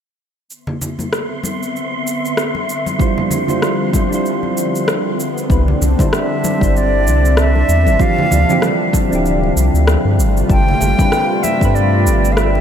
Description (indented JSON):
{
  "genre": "sunset chillout",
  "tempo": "96 BPM",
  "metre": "4/4",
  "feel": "swing 58% on 16ths",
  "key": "C major",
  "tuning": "A4 = 440 Hz",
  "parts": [
    { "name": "lush unison pad", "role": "sustained chords", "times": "0.5-12.6 s", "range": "C3 to E5", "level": "-21 LUFS", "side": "equal", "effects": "chorus" },
    { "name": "electronic cabasa and rim click", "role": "drums", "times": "0.5-12.5 s", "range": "none", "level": "-23 LUFS", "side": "left 1 dB", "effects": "overdrive" },
    { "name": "wind-like tuned noise texture", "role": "texture", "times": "1.1-5.5 s", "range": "C6", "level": "-28 LUFS", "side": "right 1 dB", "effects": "built-in reverb, analog chorus" },
    { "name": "congas", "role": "percussion", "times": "0.7-12.6 s", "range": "none", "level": "-25 LUFS", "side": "left 1 dB", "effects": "none" },
    { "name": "soft electric-piano-like synth keys", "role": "accompaniment", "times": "3.0-12.6 s", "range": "E3 to C5", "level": "-20 LUFS", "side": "moving between left 5 dB and right 7 dB", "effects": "chorus, auto-pan, ping-pong delay" },
    { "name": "electronic kick drum", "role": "drums", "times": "3.0-11.7 s", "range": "none", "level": "-16 LUFS", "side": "equal", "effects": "overdrive" },
    { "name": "warm sub bass", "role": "bass", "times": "5.5-12.6 s", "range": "D1 to G2", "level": "-14 LUFS", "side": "equal", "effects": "none" },
    { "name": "hollow silver concert flute", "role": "melody", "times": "6.1-12.6 s", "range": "D5 to G5", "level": "-19 LUFS", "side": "equal", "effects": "ping-pong delay" }
  ],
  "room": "moderate huge ambient reverb, RT60 8.6 s",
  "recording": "dreamy mix soaked in reverb",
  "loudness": "-13 LUFS",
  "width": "side -8 dB against mid",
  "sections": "0.5-5.5 A section; 5.5-12.6 B section",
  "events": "kick drops out 4.9-5.5",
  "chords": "0.5 Cmaj9; 3.0 Dm11; 5.2 Cmaj9; 5.5 Cadd9; 8.0 Dm11; 10.2 G9sus4"
}